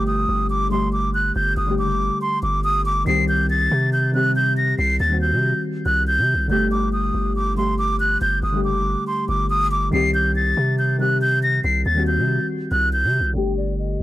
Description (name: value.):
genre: hip hop, drill.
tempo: 140 BPM.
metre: 4/4.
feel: half-time.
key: unclear.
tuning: A4 = 438 Hz.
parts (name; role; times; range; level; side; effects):
breathy concert flute; melody; 0.0-14.0 s; D5 to C7; -21 LUFS; equal; none.
muted felt-like synth keys; accompaniment; 0.0-14.0 s; D3 to G4; -24 LUFS; left 1 dB; chorus.
long sustained 808-style bass; bass; 0.0-14.0 s; F#1 to C3; -22 LUFS; equal; none.
room: studio reverb.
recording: dry, gritty hardware recording, transformer saturation, low-pass filter.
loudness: -18 LUFS.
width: side -16 dB against mid.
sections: 0.0-13.4 A section.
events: none.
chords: 0.0 Gsus2; 3.1 Cm; 6.5 Gsus2; 9.9 Cm; 13.4 Gsus2.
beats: 0.07 0.50 0.93 | 1.36 1.79 2.21 2.64 | 3.07 3.50 3.93 4.36 | 4.79 5.21 5.64 6.07 | 6.50 6.93 7.36 7.79 | 8.21 8.64 9.07 9.50 | 9.93 10.36 10.79 11.21 | 11.64 12.07 12.50 12.93 | 13.36 13.79.